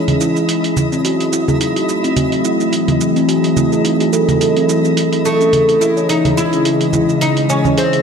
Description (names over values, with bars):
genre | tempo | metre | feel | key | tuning
organic downtempo | 107 BPM | 4/4 | swing 56% on 16ths | C# harmonic minor | A4 = 444 Hz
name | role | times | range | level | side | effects
warbly tape-like pad | sustained chords | 0.0-8.0 s | C#3 to D#5 | -17 LUFS | equal | chorus, built-in reverb
twinkling granular texture | texture | 0.0-8.0 s | E4 to D#5 | -24 LUFS | left 1 dB | built-in reverb
electronic hi-hat, congas and cabasa | drums | 0.1-8.0 s | none | -20 LUFS | right 3 dB | none
steel tongue drum | arpeggios | 0.2-7.9 s | B#3 to C#5 | -17 LUFS | equal | low-pass filter, tape echo
oud | melody | 5.3-8.0 s | A3 to E4 | -15 LUFS | equal | tape echo
room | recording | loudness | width
wet lush hall reverb, RT60 1.8 s | none | -12 LUFS | side -6 dB against mid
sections
0.0-8.0 A section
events
filter sweep on steel tongue drum 0.0-8.0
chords
0.5 G#7b9b13; 5.0 C#madd9